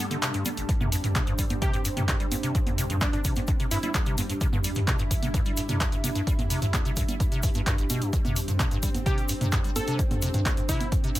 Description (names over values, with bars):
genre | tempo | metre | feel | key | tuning
acid house | 129 BPM | 4/4 | straight | unclear | A4 = 440 Hz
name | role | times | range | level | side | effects
lush unison pad | sustained chords | 0.0-11.2 s | G2 to E4 | -36 LUFS | equal | chorus, phaser, sidechain pumping
acid bass, square | riff | 0.0-11.2 s | G1 to G3 | -31 LUFS | equal | lush chorus, tape echo
granular cloud pad | texture | 0.0-11.2 s | D4 to A5 | -36 LUFS | right 1 dB | built-in reverb, sidechain pumping
punchy analog drum machine | drums | 0.1-11.2 s | congas, handclaps, hi-hat, toms | -29 LUFS | equal | none
egg shaker | percussion | 0.1-11.2 s | none | -38 LUFS | left 3 dB | none
electronic kick drum | drums | 0.7-11.0 s | none | -26 LUFS | equal | none
plucky unison lead | melody | 1.6-3.9, 9.1-10.9 s | D4 to A4 | -34 LUFS | equal | tape echo
room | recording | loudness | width
light reverb | none | -24 LUFS | side -15 dB against mid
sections
0.0-11.2 A section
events
break 0.0-0.7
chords
0.0 G5